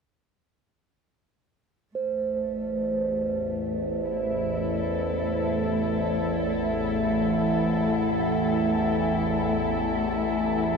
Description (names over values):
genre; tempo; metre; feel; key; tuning
dark ambient drone; free time; none; none; A minor; A4 = 440 Hz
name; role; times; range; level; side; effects
dark studio cello section; sustained chords; 1.9-10.8 s; A3 to A4; -26 LUFS; left 1 dB; none
overtone-sweeping drone; drone; 2.5-10.8 s; A1 to E2; -28 LUFS; equal; chorus, built-in reverb
bronze singing bowl; texture; 2.0-10.8 s; C5; -32 LUFS; right 4 dB; none
room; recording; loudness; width
wet huge ambient reverb, RT60 7.6 s; dreamy mix soaked in reverb; -24 LUFS; side -5 dB against mid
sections
2.0-10.8 A section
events
none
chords
2.0 Am